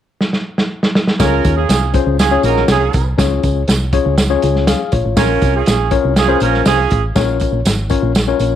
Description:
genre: uptempo 1960s-style soul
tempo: 121 BPM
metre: 4/4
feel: straight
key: Db major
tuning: A4 = 438 Hz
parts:
  - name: vintage drum kit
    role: drums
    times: 0.2-8.5 s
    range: hi-hat, kick drum, snare drum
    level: -16 LUFS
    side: right 1 dB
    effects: none
  - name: warm horn section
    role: second line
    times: 1.2-7.0 s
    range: Db4 to Bb4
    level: -17 LUFS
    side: right 10 dB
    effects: none
  - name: tine electric piano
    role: accompaniment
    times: 1.2-8.6 s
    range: Db4 to F5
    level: -18 LUFS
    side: left 9 dB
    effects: overdrive, fast stereo tremolo
  - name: solid FM bass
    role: bass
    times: 1.2-8.6 s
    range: Ab1 to Eb2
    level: -17 LUFS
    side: equal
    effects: none
  - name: tambourine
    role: percussion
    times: 1.2-8.5 s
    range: none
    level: -29 LUFS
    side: right 10 dB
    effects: none
room: moderate spring reverb, RT60 1.5 s, small room ambience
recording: 1960s-style stereo with parts hard left and right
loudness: -12 LUFS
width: side -10 dB against mid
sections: 0.0-1.2 A section; 1.2-8.6 B section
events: drum fill 0.2-1.2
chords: 0.0 N.C.; 1.2 Db; 5.2 Bbm

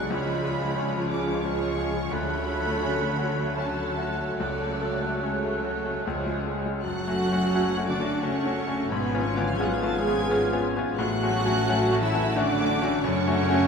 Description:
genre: classical, romantic movement for piano and orchestra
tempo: 69-90 BPM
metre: 3/4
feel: rubato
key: F# minor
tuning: A4 = 440 Hz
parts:
  - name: bright grand piano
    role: melody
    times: 0.0-13.7 s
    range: B1 to A4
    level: -28 LUFS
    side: left 4 dB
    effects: none
  - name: rich symphonic violin section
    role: melody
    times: 0.0-13.7 s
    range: C#5 to A6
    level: -36 LUFS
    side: right 4 dB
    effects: none
  - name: bright clarinet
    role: second line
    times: 0.0-13.7 s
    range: B3 to C#5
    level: -36 LUFS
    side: right 5 dB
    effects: none
  - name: mellow hollow silver concert flute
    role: second line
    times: 0.0-13.7 s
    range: B4 to F#6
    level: -36 LUFS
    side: right 1 dB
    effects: none
  - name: rich studio violin section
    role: second line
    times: 0.0-13.7 s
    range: G#4 to A5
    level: -37 LUFS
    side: equal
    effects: none
  - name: clear symphonic viola section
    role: accompaniment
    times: 0.0-13.7 s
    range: E#3 to A4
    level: -32 LUFS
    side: right 3 dB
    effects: none
  - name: mellow bassoon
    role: accompaniment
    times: 0.0-6.8 s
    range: G#3 to A3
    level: -38 LUFS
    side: left 2 dB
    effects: none
  - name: mellow French horn section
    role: sustained chords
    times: 0.0-13.7 s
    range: G#3 to A4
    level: -34 LUFS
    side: right 2 dB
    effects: none
  - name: rich symphonic cello section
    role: bass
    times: 0.0-13.7 s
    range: B2 to A3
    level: -34 LUFS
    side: equal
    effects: none
  - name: rich symphonic double bass section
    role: bass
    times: 0.0-13.7 s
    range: F#1 to F#2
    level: -34 LUFS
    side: equal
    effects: none
  - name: clear oboe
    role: second line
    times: 6.8-13.7 s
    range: E#5 to A5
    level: -37 LUFS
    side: left 2 dB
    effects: none
  - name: mellow trombone section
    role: sustained chords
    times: 6.8-13.7 s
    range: E#3 to B3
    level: -35 LUFS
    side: equal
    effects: none
room: wet huge ambient reverb, RT60 7.8 s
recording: in a vast, echoing space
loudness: -23 LUFS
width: side -6 dB against mid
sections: 0.0-6.8 A section; 6.8-13.7 B section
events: none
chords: 0.1 C#7; 2.1 Dmaj7; 4.4 F#m/C#; 6.0 C#; 6.8 F#m; 8.9 C#7/G#; 11.0 F#m/A; 13.0 F#m

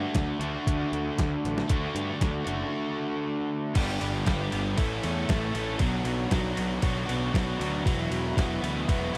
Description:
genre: indie rock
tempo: 117 BPM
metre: 4/4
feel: straight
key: unclear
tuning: A4 = 440 Hz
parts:
  - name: brassy analog pad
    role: sustained chords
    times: 0.0-9.2 s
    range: F#4 to D6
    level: -43 LUFS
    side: equal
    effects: none
  - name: biting overdriven guitar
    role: riff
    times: 0.0-9.2 s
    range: E3 to F#4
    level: -38 LUFS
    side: equal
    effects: subtle chorus
  - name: crunchy overdriven guitar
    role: riff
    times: 0.0-9.2 s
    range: E2 to A4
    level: -33 LUFS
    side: equal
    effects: none
  - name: fuzz picked electric bass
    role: bass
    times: 0.0-9.2 s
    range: E1 to G2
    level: -34 LUFS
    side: equal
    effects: overdrive
  - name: boom bap sampler-style drum kit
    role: drums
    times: 0.1-9.2 s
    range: crash cymbal, hi-hat, kick drum, ride cymbal, snare drum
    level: -32 LUFS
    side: equal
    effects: none
room: little or no reverb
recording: none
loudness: -28 LUFS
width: mono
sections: 0.0-3.8 A section; 3.8-9.2 B section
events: none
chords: 0.0 D; 3.8 G; 4.8 A; 5.8 Bmadd9; 7.9 Esus2

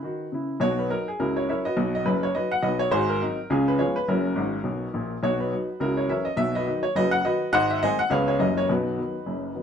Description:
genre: jazz, stride piano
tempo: 208 BPM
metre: 4/4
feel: swing 59% on 8ths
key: B major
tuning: A4 = 440 Hz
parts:
  - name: clear upright piano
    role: solo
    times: 0.0-9.6 s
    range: F#1 to F#5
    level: -22 LUFS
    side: equal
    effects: none
room: moderate studio reverb, RT60 0.8 s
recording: nothing above 11.0 kHz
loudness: -22 LUFS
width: side -7 dB against mid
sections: 0.6-9.6 A section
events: upright piano fill 4.4-5.2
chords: 0.0 B; 1.2 F#7/C#; 1.8 B; 2.9 G#7; 3.5 C#7; 4.1 F#; 5.2 B; 5.8 F#7/C#; 6.4 B; 7.5 G#; 8.1 C#7; 8.4 F#7b9; 8.7 B

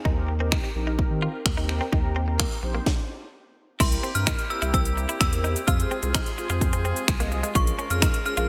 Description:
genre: dance-pop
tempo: 128 BPM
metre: 4/4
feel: straight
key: unclear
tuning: A4 = 440 Hz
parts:
  - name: mellow synth brass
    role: accompaniment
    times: 0.0-8.5 s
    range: C4 to Eb5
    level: -35 LUFS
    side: equal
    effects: chorus, phaser, sidechain pumping
  - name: direct-recorded clean electric guitar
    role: riff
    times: 0.0-8.5 s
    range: Ab3 to F4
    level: -36 LUFS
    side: equal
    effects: analog chorus
  - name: saturated sub bass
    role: bass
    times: 0.1-8.5 s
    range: Bb1 to Eb3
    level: -29 LUFS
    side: equal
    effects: sidechain pumping
  - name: house drum kit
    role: drums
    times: 0.1-8.5 s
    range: crash cymbal, finger snaps, hi-hat, kick drum, shaker, snare drum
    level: -27 LUFS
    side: equal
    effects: gated reverb
  - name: synth chime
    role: melody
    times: 3.8-8.5 s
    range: C6 to F6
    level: -33 LUFS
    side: equal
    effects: ensemble chorus
  - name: bright woodwind section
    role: sustained chords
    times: 3.8-8.5 s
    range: C3 to Ab4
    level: -37 LUFS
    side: equal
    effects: sidechain pumping
room: light reverb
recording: bright 1980s-style digital production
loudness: -25 LUFS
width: mono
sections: 0.0-3.8 A section; 3.8-8.5 B section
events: stop 2.9-3.8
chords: 0.1 Eb6; 3.8 C7; 5.7 Fm; 7.6 Bbm7

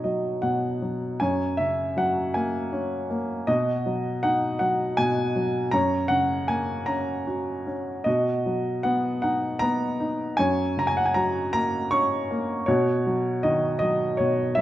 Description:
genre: classical, lyrical solo piano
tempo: 53 BPM (dotted quarters)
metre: 6/8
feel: rubato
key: B major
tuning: A4 = 440 Hz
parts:
  - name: warm upright piano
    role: solo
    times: 0.0-14.6 s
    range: F#2 to C#6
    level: -22 LUFS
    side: equal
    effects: none
room: moderate recital hall reverb, RT60 1.7 s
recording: nothing above 10.6 kHz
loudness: -22 LUFS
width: side -14 dB against mid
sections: 0.0-14.6 A section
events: none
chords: 0.0 Badd9; 1.2 F#add9; 3.5 B; 5.7 F#; 8.1 B; 10.4 F#; 12.7 Badd9

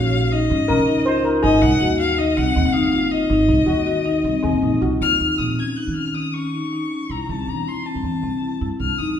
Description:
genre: contemporary instrumental, chamber music in an uneven meter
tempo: 159 BPM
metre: 5/4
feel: straight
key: Eb dorian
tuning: A4 = 442 Hz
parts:
  - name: clear violin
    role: melody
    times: 0.0-9.2 s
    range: Eb5 to Ab6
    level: -24 LUFS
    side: left 5 dB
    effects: none
  - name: steel pan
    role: second line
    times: 0.0-5.2 s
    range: Gb4 to C5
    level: -24 LUFS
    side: equal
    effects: none
  - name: marimba with medium mallets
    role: arpeggios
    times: 0.0-9.1 s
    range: C4 to Gb4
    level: -20 LUFS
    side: left 2 dB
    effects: none
  - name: upright bass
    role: bass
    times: 0.0-9.2 s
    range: Gb1 to Eb3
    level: -24 LUFS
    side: right 2 dB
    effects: none
room: wet recital hall reverb, RT60 1.5 s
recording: recorded in a church or concert hall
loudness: -17 LUFS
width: side -9 dB against mid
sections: 0.0-5.2 A section; 5.2-9.2 B section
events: none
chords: 0.0 Eb7(no3); 1.4 Ab7; 5.2 Eb5; 7.1 C

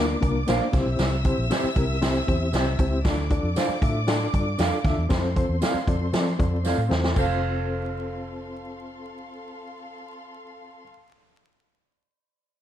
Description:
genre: uptempo 1960s-style soul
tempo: 117 BPM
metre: 4/4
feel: straight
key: F major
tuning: A4 = 441 Hz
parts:
  - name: warm symphonic violin section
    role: second line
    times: 0.0-10.9 s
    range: A4 to E6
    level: -35 LUFS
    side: equal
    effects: slapback echo
  - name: mellow reed electric piano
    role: accompaniment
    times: 0.0-10.9 s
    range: Bb3 to E5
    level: -28 LUFS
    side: left 2 dB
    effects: fast tremolo
  - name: vintage muted fingered electric bass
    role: bass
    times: 0.0-10.9 s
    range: F1 to F3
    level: -26 LUFS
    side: equal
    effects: none
  - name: swinging big-band drum kit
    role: drums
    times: 0.2-7.3 s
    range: crash cymbal, hi-hat, kick drum, snare drum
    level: -26 LUFS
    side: equal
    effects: none
  - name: electric guitar through a small old amp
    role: stabs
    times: 0.5-10.9 s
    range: G4 to F5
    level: -32 LUFS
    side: right 5 dB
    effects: slapback echo
  - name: tambourine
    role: percussion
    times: 0.5-7.4 s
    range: none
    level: -44 LUFS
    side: right 7 dB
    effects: none
room: light reverb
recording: dark, warm production, vinyl crackle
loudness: -21 LUFS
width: side -11 dB against mid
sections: 0.0-7.2 A section; 7.2-11.3 B section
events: drum fill 6.6-7.2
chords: 0.0 Bb; 0.7 C; 3.0 Dm; 5.1 F

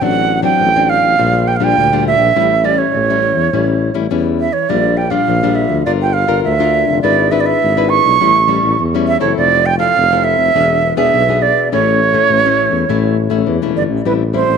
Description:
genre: samba and choro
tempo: 103 BPM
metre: 4/4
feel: straight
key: unclear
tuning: A4 = 440 Hz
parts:
  - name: silver concert flute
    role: melody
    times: 0.0-14.6 s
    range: B4 to C#6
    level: -13 LUFS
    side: right 7 dB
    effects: none
  - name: nylon-string guitar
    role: accompaniment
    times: 0.0-14.6 s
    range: A2 to B4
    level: -17 LUFS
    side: left 11 dB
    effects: none
  - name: breathy tuba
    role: bass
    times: 0.0-14.6 s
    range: E1 to E2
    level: -18 LUFS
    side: equal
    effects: none
room: moderate plate reverb, RT60 2.5 s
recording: 1960s-style stereo with parts hard left and right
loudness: -11 LUFS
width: side -6 dB against mid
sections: 0.0-14.1 A section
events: none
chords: 0.0 D7/A; 1.2 Gm7/Bb; 2.4 A7; 4.7 Bb6; 5.9 Gm7; 7.0 E7/G#; 8.2 A7; 9.4 Fmaj7; 10.5 E7; 11.7 A; 14.1 Am7

